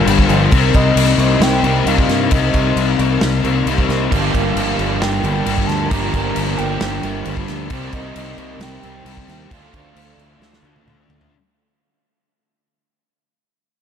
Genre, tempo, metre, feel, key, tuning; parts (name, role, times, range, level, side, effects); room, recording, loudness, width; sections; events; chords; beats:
rock, shoegaze and dream pop; 134 BPM; 4/4; straight; G minor; A4 = 440 Hz
ensemble organ-string; sustained chords; 0.0-11.3 s; D4 to G5; -28 LUFS; right 1 dB; ensemble chorus
picked plugged-in twelve-string acoustic guitar; arpeggios; 0.0-11.3 s; Eb3 to Eb4; -27 LUFS; right 11 dB; wide subtle chorus, slapback echo
thick fuzz guitar; riff; 0.0-11.3 s; G2 to D4; -19 LUFS; left 7 dB; distortion, ensemble chorus
growling fingered electric bass; bass; 0.1-11.3 s; G1 to G2; -21 LUFS; equal; overdrive
loose indie drum kit; drums; 0.1-11.3 s; crash cymbal, kick drum, snare drum, toms; -20 LUFS; equal
soft octave-layered synth lead; melody; 0.7-10.9 s; Eb5 to Bb5; -25 LUFS; right 2 dB; chorus, tremolo, slapback echo
crunchy overdriven guitar; riff; 4.1-11.3 s; G2 to G4; -25 LUFS; right 12 dB; reverse reverb
light reverb; -14 LUFS; side -8 dB against mid
0.0-11.3 A section
fade-out 0.0-11.3; drum fill 10.4-11.3
0.0 Gm7; 0.5 Cm7; 4.1 Gm7; 7.7 Cm7; 9.5 Dm7
0.07 | 0.52 0.97 1.42 1.87 | 2.32 2.77 3.22 3.67 | 4.12 4.57 5.01 5.46 | 5.91 6.36 6.81 7.26 | 7.71 8.16 8.61 9.06 | 9.51 9.96 10.42 10.87